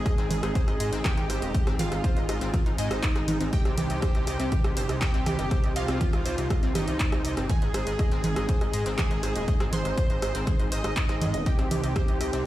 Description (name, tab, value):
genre	melodic techno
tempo	121 BPM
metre	4/4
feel	straight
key	unclear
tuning	A4 = 440 Hz
part	soft supersaw	melody	0.0-12.5 s	Eb4 to Eb5	-33 LUFS	right 1 dB	sidechain pumping, tape echo
part	glassy wavetable pluck	second line	0.0-12.5 s	Eb5 to Eb6	-41 LUFS	right 1 dB	none
part	warm analog pad	sustained chords	0.0-12.5 s	C3 to G4	-36 LUFS	equal	chorus, sidechain pumping
part	analog pluck	arpeggios	0.0-12.4 s	C4 to Ab5	-37 LUFS	equal	chorus, sidechain pumping, tape echo
part	gritty driven synth bass	bass	0.0-12.4 s	Eb1 to Ab2	-31 LUFS	equal	sidechain pumping
part	electronic kick drum	drums	0.1-12.1 s	none	-26 LUFS	equal	none
part	punchy analog drum machine	drums	0.1-12.4 s	congas, handclaps, hi-hat, rim click	-32 LUFS	right 1 dB	overdrive
room	little or no reverb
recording	played on a big sound system in a bare room, stone room reverb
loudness	-24 LUFS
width	side -14 dB against mid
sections	0.0-12.5 A section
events	none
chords	0.0 Ab; 3.5 Cm; 7.5 Ab; 11.5 Cm